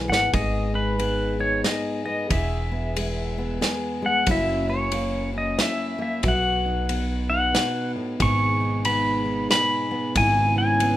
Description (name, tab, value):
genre	acoustic folk duo or small band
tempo	92 BPM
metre	3/4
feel	swing 62% on 8ths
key	unclear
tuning	A4 = 439 Hz
part	fingerpicked steel-string acoustic guitar	accompaniment	0.0-11.0 s	E2 to G#4	-27 LUFS	left 1 dB	none
part	upright bass	bass	0.0-11.0 s	E1 to B1	-27 LUFS	right 1 dB	none
part	pedal steel guitar	melody	0.1-11.0 s	B4 to C#6	-24 LUFS	equal	none
part	loose indie drum kit	drums	0.1-11.0 s	kick drum, ride cymbal, snare drum	-29 LUFS	equal	none
part	mellow tonewheel organ	sustained chords	8.2-11.0 s	B2 to E4	-30 LUFS	right 2 dB	slow rotary speaker
room	wet studio reverb, RT60 0.5 s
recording	rough home demo mix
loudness	-21 LUFS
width	side -14 dB against mid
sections	0.3-11.0 A section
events	drum fill 0.0-0.3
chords	0.3 G#m; 2.3 E; 4.3 F#7; 6.2 B; 8.2 G#m; 10.2 C#m7/G#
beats	| 0.34 1.00 1.65 | 2.31 2.96 3.62 | 4.27 4.93 5.58 | 6.24 6.89 7.55 | 8.20 8.86 9.51 | 10.17 10.82